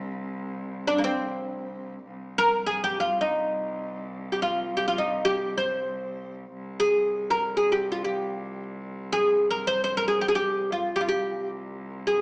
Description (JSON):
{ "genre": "Turkish makam ensemble", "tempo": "free time", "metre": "none", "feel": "none", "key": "C makam nihavent", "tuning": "A4 = 440 Hz", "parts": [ { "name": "oud", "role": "melody", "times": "0.0-12.2 s", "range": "Bb3 to C5", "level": "-24 LUFS", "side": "equal", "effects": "none" }, { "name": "clear cello", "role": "drone", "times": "0.0-12.2 s", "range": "C2", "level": "-37 LUFS", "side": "equal", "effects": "none" } ], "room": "wet recital hall reverb, RT60 1.4 s", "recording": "small speaker sound", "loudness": "-24 LUFS", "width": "side -30 dB against mid", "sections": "0.0-2.1 A section; 2.1-12.2 A section", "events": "none", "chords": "none", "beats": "free time" }